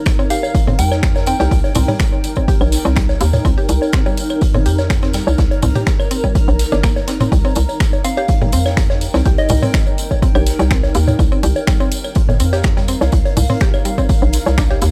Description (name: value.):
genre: minimal techno.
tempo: 124 BPM.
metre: 4/4.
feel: swing 53% on 16ths.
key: C minor.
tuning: A4 = 440 Hz.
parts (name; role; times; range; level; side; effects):
granular cloud pad; texture; 0.0-14.9 s; Eb4 to Bb5; -27 LUFS; equal; built-in reverb, sidechain pumping.
electronic kick drum; drums; 0.1-14.7 s; none; -18 LUFS; equal; studio ambience.
garage drum kit; drums; 0.1-14.9 s; finger snaps, hi-hat; -25 LUFS; equal; studio ambience.
raw garage drum kit; drums; 0.1-14.9 s; hi-hat, snare drum; -37 LUFS; equal; high-pass filter on hats, studio ambience, high-pass filter on snare, high-pass filter on room.
electronic claves, woodblock and toms; percussion; 0.1-14.8 s; none; -24 LUFS; equal; studio ambience.
tambourine; percussion; 0.1-14.9 s; none; -33 LUFS; equal; none.
mallet-like synth pluck; riff; 0.2-14.8 s; G3 to G4; -27 LUFS; equal; chorus, sidechain pumping, tape echo.
soft synth bell; melody; 0.3-1.5, 8.0-9.7 s; Eb5 to G5; -26 LUFS; equal; chorus, phaser, vintage 12-bit sampler grit, tape echo.
hollow knocking FM bass; bass; 0.7-14.9 s; G1 to F2; -19 LUFS; equal; sidechain pumping.
room: little or no reverb.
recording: none.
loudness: -15 LUFS.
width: mono.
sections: 0.0-14.9 A section.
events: none.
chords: 0.0 Cm7.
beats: 0.06 0.55 1.03 | 1.51 2.00 2.48 2.96 | 3.45 3.93 4.42 4.90 | 5.38 5.87 6.35 6.84 | 7.32 7.80 8.29 8.77 | 9.26 9.74 10.22 10.71 | 11.19 11.67 12.16 12.64 | 13.13 13.61 14.09 14.58.